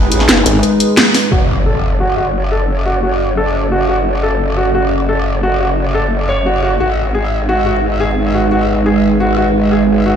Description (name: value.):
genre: dark technical drum and bass.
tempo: 175 BPM.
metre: 4/4.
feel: straight.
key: F# minor.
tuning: A4 = 439 Hz.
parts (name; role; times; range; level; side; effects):
dark analog pad; sustained chords; 0.0-10.2 s; G#3 to B4; -17 LUFS; right 1 dB; chorus, phaser.
growl bass; bass; 0.0-10.2 s; F#1 to A1; -16 LUFS; equal; chorus, overdrive.
drum and bass drum kit; drums; 0.1-1.2 s; hi-hat, snare drum; -13 LUFS; equal; none.
formant-sweep wobble bass; bass; 0.5-0.6 s; G#1; -13 LUFS; right 1 dB; chorus.
felt-muted upright piano; arpeggios; 1.3-10.2 s; F#4 to C#5; -17 LUFS; left 1 dB; low-pass filter, ping-pong delay.
impact; sound effects; 1.3-2.7 s; none; -17 LUFS; equal; none.
room: moderate lush hall reverb, RT60 1.7 s, digital ambience.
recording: played on a big sound system in a bare room, stone room reverb.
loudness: -11 LUFS.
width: side -8 dB against mid.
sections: 0.0-1.3 A section; 1.3-10.2 B section.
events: drop 0.0-1.3; band accent 1.0; impact 1.3-2.7; filter sweep on analog synth pad 1.3-10.2; filter sweep on felt piano 1.3-10.2.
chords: 0.0 G#m; 1.3 F#m; 6.8 G#m.